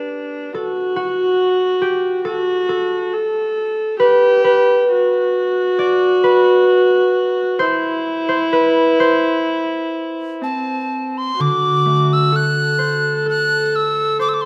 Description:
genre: celtic folk, Celtic slow air.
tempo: 59-71 BPM.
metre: 4/4.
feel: rubato.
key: D mixolydian.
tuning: A4 = 437 Hz.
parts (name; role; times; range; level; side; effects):
warm viola; second line; 0.0-14.5 s; C4 to A4; -20 LUFS; equal; none.
concert harp; accompaniment; 0.0-14.5 s; D3 to D5; -20 LUFS; equal; none.
tin whistle; melody; 10.4-14.5 s; A5 to F#6; -20 LUFS; equal; none.
room: moderate concert hall reverb, RT60 2.2 s.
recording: none.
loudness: -17 LUFS.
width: mono.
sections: 0.0-11.4 A section; 11.4-14.5 B section.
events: harp solo 0.0-11.4.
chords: 0.0 N.C.; 11.4 D7.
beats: | 0.54 1.39 2.25 3.12 | 4.01 4.90 5.79 6.68 | 7.59 8.51 9.44 10.41 | 11.39 12.32 13.25 14.19.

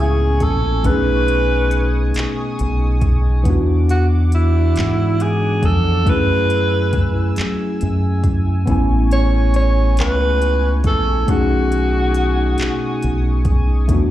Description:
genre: slow six-eight R&B.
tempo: 46 BPM (dotted quarters).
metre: 6/8.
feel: straight.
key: unclear.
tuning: A4 = 440 Hz.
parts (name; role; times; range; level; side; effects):
warm tenor saxophone; melody; 0.0-13.5 s; E4 to C#5; -20 LUFS; right 1 dB; slapback echo.
mellow electric guitar; second line; 0.0-14.1 s; A2 to G#4; -28 LUFS; right 4 dB; phaser.
tine electric piano; accompaniment; 0.0-14.1 s; E3 to G#5; -22 LUFS; left 2 dB; slapback echo.
chorused pulse-width pad; sustained chords; 0.0-14.1 s; A3 to E6; -32 LUFS; left 2 dB; none.
deep dub fingered electric bass; bass; 0.0-14.1 s; A1 to G#2; -17 LUFS; equal; none.
smooth R&B drum kit; drums; 0.4-14.1 s; handclaps, hi-hat, kick drum; -20 LUFS; equal; overdrive.
room: little or no reverb.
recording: live gig heard through the venue's PA, club reverb.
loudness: -14 LUFS.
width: side -13 dB against mid.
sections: 0.0-14.1 A section.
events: none.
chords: 0.0 Amaj7; 0.8 B13; 3.5 Esus2; 6.1 F#m9; 8.7 Amaj7; 11.3 B13.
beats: | 0.84 2.15 | 3.45 4.76 | 6.06 7.37 | 8.67 9.97 | 11.28 12.58 | 13.89.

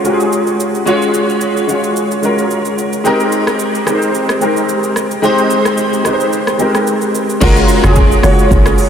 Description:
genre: amapiano.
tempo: 110 BPM.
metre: 4/4.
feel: swing 55% on 16ths.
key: F# major.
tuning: A4 = 443 Hz.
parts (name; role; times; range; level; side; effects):
warm concert grand piano; accompaniment; 0.0-8.9 s; G#3 to C#5; -12 LUFS; equal; ensemble chorus.
deep house drum kit; drums; 0.0-8.9 s; crash cymbal, hi-hat, kick drum, rim click, shaker, toms; -19 LUFS; equal; none.
hollow log drum bass; bass; 7.4-8.9 s; F#1; -12 LUFS; equal; none.
room: wet huge ambient reverb, RT60 6.7 s.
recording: dreamy mix soaked in reverb.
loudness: -11 LUFS.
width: side -8 dB against mid.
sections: 0.0-7.4 A section; 7.4-8.9 B section.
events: drop 7.4-8.9.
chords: 0.0 F#maj9; 3.1 G#maj9; 7.4 F#maj9.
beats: 0.33 | 0.87 1.42 1.96 2.51 | 3.05 3.60 4.14 4.69 | 5.23 5.78 6.33 6.87 | 7.42 7.96 8.51.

